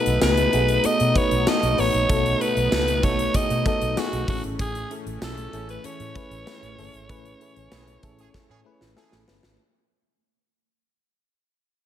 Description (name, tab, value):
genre	1980s-style pop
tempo	96 BPM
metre	4/4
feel	straight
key	unclear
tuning	A4 = 440 Hz
part	raspy alto saxophone	melody	0.0-9.0 s	F#4 to D#5	-24 LUFS	equal	none
part	FM electric piano with auto-pan	accompaniment	0.0-9.6 s	A2 to B4	-28 LUFS	left 3 dB	none
part	lush unison pad	sustained chords	0.0-9.6 s	E3 to D#4	-33 LUFS	right 3 dB	chorus, phaser
part	vintage muted fingered electric bass	bass	0.1-9.6 s	G1 to B2	-26 LUFS	equal	none
part	big rock drum kit	drums	0.1-9.6 s	hi-hat, kick drum, snare drum, tambourine	-26 LUFS	equal	gated reverb
part	clear horn section	stabs	7.7-9.2 s	E3 to G#4	-64 LUFS	right 4 dB	none
room	light reverb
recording	none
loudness	-19 LUFS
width	side -10 dB against mid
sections	0.0-9.6 A section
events	fade-out 0.0-9.6; band accent 7.1-9.6; drum fill 8.3-9.6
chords	0.0 B7; 4.3 Amaj7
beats	0.22 0.84 1.47 | 2.10 2.72 3.35 3.97 | 4.59 5.22 5.84 6.47 | 7.09 7.72 8.35 8.97